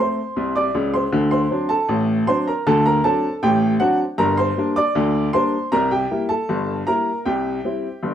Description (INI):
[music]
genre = ragtime piano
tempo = 78 BPM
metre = 2/4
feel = straight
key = unclear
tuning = A4 = 440 Hz
[part]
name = clear upright piano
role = solo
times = 0.0-8.1 s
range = G1 to D6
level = -17 LUFS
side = equal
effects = none
[sound]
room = moderate club reverb, RT60 0.7 s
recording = none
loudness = -17 LUFS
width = side -10 dB against mid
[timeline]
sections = 0.0-8.1 A section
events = none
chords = 0.0 F (rootless); 1.1 D7; 4.2 Gm; 5.7 C7; 7.2 C